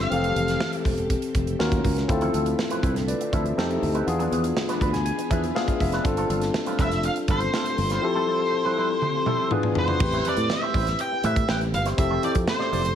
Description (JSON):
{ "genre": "polished 1980s jazz-funk pop", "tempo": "121 BPM", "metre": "4/4", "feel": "straight", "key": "A minor", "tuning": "A4 = 441 Hz", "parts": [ { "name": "octave-fuzz lead guitar", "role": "melody", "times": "0.0-0.7, 6.8-12.9 s", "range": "C5 to G5", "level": "-27 LUFS", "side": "equal", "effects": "distortion" }, { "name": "barky tine electric piano", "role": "accompaniment", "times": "0.0-12.9 s", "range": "E3 to B5", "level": "-26 LUFS", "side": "left 3 dB", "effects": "overdrive, lush chorus" }, { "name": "phased string machine", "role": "sustained chords", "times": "0.0-10.0 s", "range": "D3 to E5", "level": "-35 LUFS", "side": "equal", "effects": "ensemble chorus, phaser" }, { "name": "overdriven fingered electric bass", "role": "bass", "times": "0.0-12.9 s", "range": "E1 to A2", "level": "-27 LUFS", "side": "right 1 dB", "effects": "none" }, { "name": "modern studio drum kit", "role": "drums", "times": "0.0-12.9 s", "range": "crash cymbal, hi-hat, kick drum, snare drum, toms", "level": "-27 LUFS", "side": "right 1 dB", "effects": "gated reverb" }, { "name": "congas", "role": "percussion", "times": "0.1-12.9 s", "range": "none", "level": "-38 LUFS", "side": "right 3 dB", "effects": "none" }, { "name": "electric guitar with an envelope filter", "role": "riff", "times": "2.1-12.9 s", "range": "F3 to D5", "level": "-32 LUFS", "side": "right 3 dB", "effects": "lush chorus" } ], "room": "light reverb, small room ambience", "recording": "none", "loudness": "-21 LUFS", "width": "side -9 dB against mid", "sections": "0.0-10.0 A section; 10.0-12.9 B section", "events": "tine electric piano fill 4.6-6.0; drum fill 9.0-10.0", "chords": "0.1 Fmaj9; 1.6 D#m9; 2.1 Dm9; 3.6 F9; 4.1 E7b9; 6.0 G9sus4; 8.0 Fmaj9; 9.5 E7b9; 10.0 Am9; 12.0 Fmaj7" }